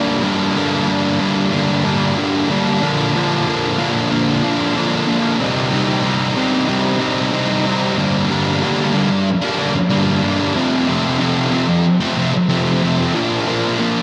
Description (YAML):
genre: rock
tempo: 93 BPM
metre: 4/4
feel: straight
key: G minor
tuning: A4 = 435 Hz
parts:
  - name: thick fuzz guitar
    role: solo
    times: 0.0-14.0 s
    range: F2 to Eb4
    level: -17 LUFS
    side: equal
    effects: distortion, diffuse ambient delay
room: wet huge ambient reverb, RT60 8.5 s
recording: dreamy mix soaked in reverb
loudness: -17 LUFS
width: mono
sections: 0.0-8.0 A section; 8.0-14.0 B section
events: build-up 0.0-8.0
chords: 0.0 Gm; 2.8 Bb; 5.4 Cm; 8.0 Gm; 10.6 F; 13.1 Bb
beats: | 0.23 0.88 1.52 2.17 | 2.81 3.46 4.11 4.75 | 5.40 6.04 6.69 7.33 | 7.98 8.62 9.27 9.92 | 10.56 11.21 11.85 12.50 | 13.14 13.79